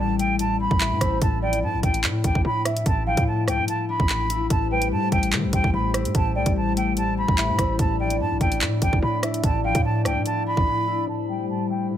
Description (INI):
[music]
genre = hip hop, drill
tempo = 146 BPM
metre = 4/4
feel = half-time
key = A minor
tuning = A4 = 440 Hz
[part]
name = concert flute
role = melody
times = 0.0-11.9 s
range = G5 to B5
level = -26 LUFS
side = right 1 dB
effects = low-pass filter, tape echo
[part]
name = concert harp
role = accompaniment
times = 0.0-12.0 s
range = A2 to E4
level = -26 LUFS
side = left 5 dB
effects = low-pass filter
[part]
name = hard-hitting 808-style bass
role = bass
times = 0.0-10.7 s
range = A1 to E3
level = -27 LUFS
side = right 1 dB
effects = none
[part]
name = downlifter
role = sound effects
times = 0.0-1.2 s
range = none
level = -48 LUFS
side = right 1 dB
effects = none
[part]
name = drill drum kit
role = drums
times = 0.2-10.7 s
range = handclaps, hi-hat, kick drum, rim click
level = -23 LUFS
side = right 1 dB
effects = none
[part]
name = hollow clarinet-like synth lead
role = second line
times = 0.8-9.8 s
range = B4 to F5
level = -33 LUFS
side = right 4 dB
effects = chorus, tape echo
[part]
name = glass harmonica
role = sustained chords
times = 4.5-12.0 s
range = A3 to D5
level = -32 LUFS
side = right 3 dB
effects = low-pass filter
[sound]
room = little or no reverb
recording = none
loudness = -20 LUFS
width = side -10 dB against mid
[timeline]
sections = 0.0-11.1 A section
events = drums muted 10.7-11.1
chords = 0.0 Am7; 1.2 Dmadd9/A; 4.5 Am7; 7.8 Dmadd9/A; 11.1 Am7